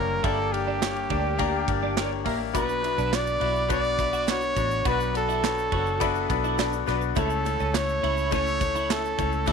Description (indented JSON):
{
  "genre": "piano-driven pop",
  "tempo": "104 BPM",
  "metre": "4/4",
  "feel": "straight",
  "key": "unclear",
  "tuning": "A4 = 439 Hz",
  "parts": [
    { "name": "clear trumpet", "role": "melody", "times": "0.0-9.5 s", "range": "G4 to D5", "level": "-27 LUFS", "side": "right 2 dB", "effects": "none" },
    { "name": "clear baby grand piano", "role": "accompaniment", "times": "0.0-9.5 s", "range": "G2 to E5", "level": "-28 LUFS", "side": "left 14 dB", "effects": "none" },
    { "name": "vintage muted fingered electric bass", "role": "bass", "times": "0.0-9.5 s", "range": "F#1 to D2", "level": "-31 LUFS", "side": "right 1 dB", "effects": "none" },
    { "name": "twelve-string electric guitar", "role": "riff", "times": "0.2-9.5 s", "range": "Bb3 to F#4", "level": "-33 LUFS", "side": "right 14 dB", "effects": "ensemble chorus" },
    { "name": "modern studio drum kit", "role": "drums", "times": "0.2-9.5 s", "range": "handclaps, hi-hat, kick drum, ride cymbal, snare drum", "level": "-31 LUFS", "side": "right 4 dB", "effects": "none" },
    { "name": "tube shaker", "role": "percussion", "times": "2.5-9.5 s", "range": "none", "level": "-48 LUFS", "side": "right 20 dB", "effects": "none" }
  ],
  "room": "light reverb, studio reverb",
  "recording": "1960s-style stereo with parts hard left and right",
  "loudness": "-23 LUFS",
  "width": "side -6 dB against mid",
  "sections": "0.0-9.5 A section",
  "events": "none",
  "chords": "0.0 Gm; 2.5 Bm; 7.2 A/C#",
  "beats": "| 0.24 0.81 1.39 1.97 | 2.55 3.12 3.70 4.28 | 4.86 5.43 6.01 6.59 | 7.17 7.74 8.32 8.90 | 9.47"
}